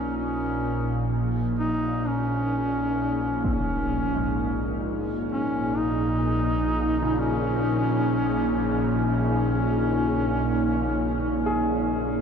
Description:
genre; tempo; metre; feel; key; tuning
dark ambient drone; free time; none; none; Bb minor; A4 = 444 Hz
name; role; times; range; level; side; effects
mellow duduk; melody; 0.0-11.8 s; Db4 to Eb4; -27 LUFS; equal; tape echo
deep dark ambient pad; sustained chords; 0.1-12.2 s; Bb3 to Db5; -28 LUFS; equal; chorus, built-in reverb
bowed-like drone; drone; 0.0-12.2 s; Bb1 to Bb2; -26 LUFS; equal; built-in reverb, phaser
impact; percussion; 3.4-3.6 s; none; -32 LUFS; left 1 dB; low-pass filter on sfx
clear concert grand piano; arpeggios; 4.1-12.2 s; Ab2 to Ab4; -35 LUFS; left 1 dB; none
room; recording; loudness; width
wet huge ambient reverb, RT60 8.7 s; cassette tape; -22 LUFS; side -6 dB against mid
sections
0.0-12.2 A section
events
fade-in on ambient pad 0.0-12.2; fade-in on impacts and reversed cymbals 0.0-12.2; filter sweep on synth drone 0.0-12.2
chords
0.0 Bbm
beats
free time

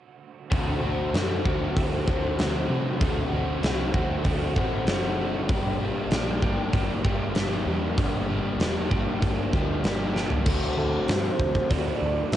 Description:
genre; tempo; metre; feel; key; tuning
rock, shoegaze and dream pop; 96 BPM; 4/4; straight; D mixolydian; A4 = 443 Hz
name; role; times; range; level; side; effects
overdriven semi-hollow guitar; riff; 0.5-12.4 s; G2 to G4; -32 LUFS; right 9 dB; reverse reverb, cassette tape
raw garage guitar; riff; 0.5-12.4 s; G2 to G4; -30 LUFS; left 7 dB; overdrive, lush chorus, cassette tape
overdriven picked electric bass; bass; 0.5-12.4 s; E1 to C3; -30 LUFS; equal; none
huge arena drum kit; drums; 0.5-12.4 s; crash cymbal, hi-hat, kick drum, snare drum, toms; -26 LUFS; equal; cassette tape
warm velvety synth lead; melody; 10.8-12.4 s; A4 to E5; -29 LUFS; right 2 dB; chorus, tremolo, tape echo
room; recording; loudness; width
light reverb; home recording on cassette, nothing above 10.8 kHz; -23 LUFS; side -12 dB against mid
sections
0.5-10.5 A section; 10.5-12.4 B section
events
drum fill 10.2-10.5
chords
0.5 D7; 5.5 Gm6; 10.5 D7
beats
| 0.52 1.14 1.76 2.39 | 3.01 3.63 4.25 4.87 | 5.50 6.12 6.74 7.36 | 7.98 8.60 9.22 9.85 | 10.47 11.09 11.71 12.33

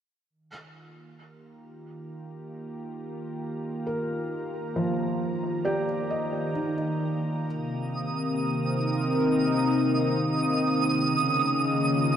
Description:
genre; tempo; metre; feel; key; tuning
ambient; 67 BPM; 4/4; straight; Eb major; A4 = 440 Hz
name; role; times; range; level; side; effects
warm analog pad; sustained chords; 0.3-12.2 s; C3 to Bb5; -28 LUFS; left 1 dB; chorus, shimmer reverb
organ-like drone; drone; 1.7-12.2 s; Eb3 to Bb3; -34 LUFS; right 1 dB; ensemble chorus, built-in reverb
felt-muted upright piano; arpeggios; 3.9-10.9 s; Eb3 to Eb5; -31 LUFS; equal; tape echo, shimmer reverb
twinkling granular texture; texture; 8.0-12.2 s; Eb6; -29 LUFS; right 4 dB; built-in reverb, shimmer reverb
room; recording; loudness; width
wet lush hall reverb, RT60 2.9 s; dark, warm production; -24 LUFS; side -9 dB against mid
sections
0.3-12.2 A section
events
fade-in on analog synth pad 0.3-12.2; fade-in on synth drone 0.3-12.2; fade-out on felt piano 0.3-12.2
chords
0.3 Ebmaj7; 7.5 Cm7; 11.0 Db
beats
| 0.29 1.19 2.08 2.98 | 3.87 4.77 5.66 6.56 | 7.45 8.35 9.25 10.14 | 11.04 11.93

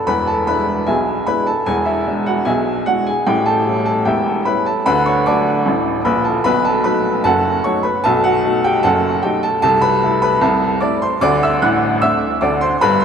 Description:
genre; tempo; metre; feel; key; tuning
ragtime piano; 75 BPM; 2/4; straight; unclear; A4 = 440 Hz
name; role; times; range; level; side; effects
clear upright piano; solo; 0.0-13.0 s; E1 to F#6; -14 LUFS; equal; none
room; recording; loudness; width
wet cathedral reverb, RT60 5.1 s; recorded in a church or concert hall; -14 LUFS; side -7 dB against mid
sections
0.0-13.0 A section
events
none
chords
0.1 E7; 3.3 A7; 4.9 D; 6.5 B7; 9.6 Am/C; 11.2 D7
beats
| 0.08 0.88 | 1.68 2.47 | 3.27 4.06 | 4.86 5.65 | 6.45 7.25 | 8.04 8.83 | 9.63 10.43 | 11.22 12.02 | 12.82

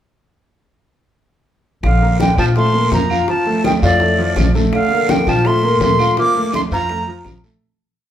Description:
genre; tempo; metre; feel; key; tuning
Afro-Cuban jazz; 166 BPM; 4/4; straight; Bb major; A4 = 440 Hz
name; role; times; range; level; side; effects
bright concert flute; melody; 1.8-7.4 s; D5 to D6; -18 LUFS; right 2 dB; none
mellow tenor saxophone; second line; 1.8-7.4 s; A2 to Bb3; -23 LUFS; left 3 dB; none
upright bass; bass; 1.8-7.6 s; Bb1 to Bb2; -18 LUFS; equal; none
bongos; percussion; 1.8-7.6 s; none; -28 LUFS; left 2 dB; none
claves; percussion; 1.8-7.4 s; none; -34 LUFS; right 3 dB; none
congas; percussion; 1.8-7.4 s; none; -23 LUFS; equal; none
guiro; percussion; 1.8-7.6 s; none; -33 LUFS; right 2 dB; none
warm grand piano; accompaniment; 2.0-7.6 s; F3 to F5; -20 LUFS; equal; none
room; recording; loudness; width
moderate large studio reverb, RT60 1.1 s; band playing live in one room; -13 LUFS; side -10 dB against mid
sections
1.8-7.6 A section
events
fade-out 6.2-7.6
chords
1.8 Bbmaj9; 3.3 Bbmaj7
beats
| 1.84 2.20 2.56 2.92 | 3.29 3.65 4.01 4.37 | 4.73 5.09 5.45 5.81 | 6.17 6.53 6.89 7.25

